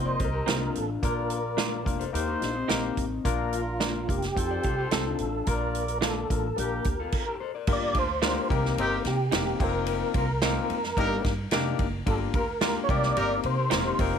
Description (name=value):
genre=uptempo 1960s-style soul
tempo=109 BPM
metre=4/4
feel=straight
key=Bb major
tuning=A4 = 441 Hz
part: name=mellow tonewheel organ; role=melody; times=0.0-14.2 s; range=F4 to D5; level=-31 LUFS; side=right 1 dB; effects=chorus vibrato, slow rotary speaker
part: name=mellow horn section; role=second line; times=0.0-13.3 s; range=Bb3 to Eb5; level=-34 LUFS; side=equal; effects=none
part: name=barky tine electric piano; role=accompaniment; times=0.0-14.2 s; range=Bb3 to Bb4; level=-31 LUFS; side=left 11 dB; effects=medium stereo tremolo
part: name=upright bass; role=bass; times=0.0-14.2 s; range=E1 to C3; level=-32 LUFS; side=right 2 dB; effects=none
part: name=electric guitar at the edge of break-up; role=riff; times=0.1-7.8, 13.6-14.1 s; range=C4 to D5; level=-35 LUFS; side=left 9 dB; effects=none
part: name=swinging big-band drum kit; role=drums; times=0.2-14.1 s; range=crash cymbal, hi-hat, kick drum, ride cymbal, snare drum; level=-30 LUFS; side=right 2 dB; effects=none
part: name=electric guitar through a small old amp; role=stabs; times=0.5-13.8 s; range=C4 to Bb4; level=-33 LUFS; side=right 13 dB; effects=tremolo
room=light reverb, small room ambience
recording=1960s-style stereo with parts hard left and right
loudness=-24 LUFS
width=side -7 dB against mid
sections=0.0-7.7 A section; 7.7-14.2 B section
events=stop 7.1-7.7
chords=0.0 Fsus4; 1.0 Bb; 2.1 Eb; 3.2 Bb; 4.4 F7; 5.5 Bb; 6.6 Gm/Bb; 7.7 Gm7; 8.5 Cm7; 9.6 F7sus4; 11.0 Ebmaj7/G; 12.1 Gm7; 12.9 Cm7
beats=0.47 | 1.03 1.58 2.14 2.69 | 3.25 3.81 4.36 4.91 | 5.47 6.02 6.57 7.12 | 7.67 8.22 8.78 9.32 | 9.87 10.42 10.97 11.52 | 12.07 12.62 13.16 13.71